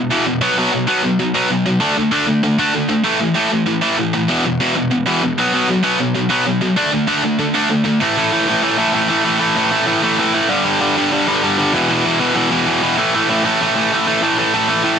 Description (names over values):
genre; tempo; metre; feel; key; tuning
punk; 193 BPM; 4/4; straight; unclear; A4 = 441 Hz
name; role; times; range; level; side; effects
tight distorted guitar; solo; 0.0-15.0 s; E2 to D4; -14 LUFS; equal; distortion
room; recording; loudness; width
light reverb; dense, heavily limited modern master; -14 LUFS; side -7 dB against mid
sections
0.0-8.0 A section; 8.0-15.0 B section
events
none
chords
0.4 B5; 1.8 D5; 3.0 A5; 4.3 E5; 5.4 B5; 6.8 D5; 8.0 A5; 10.5 G5; 11.7 E5; 13.0 A5